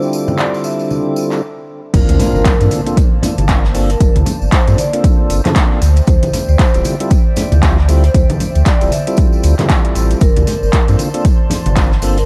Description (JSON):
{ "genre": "deep house", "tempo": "116 BPM", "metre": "4/4", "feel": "swing 59% on 16ths", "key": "unclear", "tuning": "A4 = 440 Hz", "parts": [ { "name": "hollow soft pad", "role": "sustained chords", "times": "0.0-12.3 s", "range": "Bb3 to C6", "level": "-29 LUFS", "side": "equal", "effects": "chorus, sidechain pumping" }, { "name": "tonewheel organ", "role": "stabs", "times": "0.0-12.2 s", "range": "D3 to C5", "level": "-23 LUFS", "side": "equal", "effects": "slow rotary speaker, sidechain pumping, low-pass filter, tape echo" }, { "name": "tambourine", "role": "percussion", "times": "0.0-12.3 s", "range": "none", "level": "-36 LUFS", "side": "equal", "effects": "none" }, { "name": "clear chamber violin section", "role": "texture", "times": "0.0-1.4 s", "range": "D6", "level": "-43 LUFS", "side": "equal", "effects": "none" }, { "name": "congas", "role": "percussion", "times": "0.3-11.7 s", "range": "none", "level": "-22 LUFS", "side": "equal", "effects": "none" }, { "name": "vibraphone with medium mallets", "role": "melody", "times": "0.4-12.3 s", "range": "Bb4 to E5", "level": "-26 LUFS", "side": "equal", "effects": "tape echo" }, { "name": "deep house drum kit", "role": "drums", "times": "0.4-12.3 s", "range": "crash cymbal, handclaps, hi-hat", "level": "-25 LUFS", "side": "equal", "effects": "overdrive" }, { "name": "sub bass with octave", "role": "bass", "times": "1.9-12.2 s", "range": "D1 to G2", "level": "-15 LUFS", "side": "equal", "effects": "sidechain pumping" }, { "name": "electronic kick drum", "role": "drums", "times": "1.9-11.9 s", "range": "none", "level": "-15 LUFS", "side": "equal", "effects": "overdrive" }, { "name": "soft brush drum kit", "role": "drums", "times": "1.9-12.3 s", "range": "hi-hat, snare drum, tambourine", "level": "-36 LUFS", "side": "equal", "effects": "none" }, { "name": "impact", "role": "sound effects", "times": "1.9-4.0 s", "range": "none", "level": "-24 LUFS", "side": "equal", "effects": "none" } ], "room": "small room ambience", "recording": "none", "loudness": "-13 LUFS", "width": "mono", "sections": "0.0-1.9 A section; 1.9-12.3 B section", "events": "stop 1.4-1.9; drop 1.9-12.3; impact 1.9-4.0", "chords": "0.0 Dm11; 1.9 Gm11; 5.8 Dm11; 10.2 Gm11" }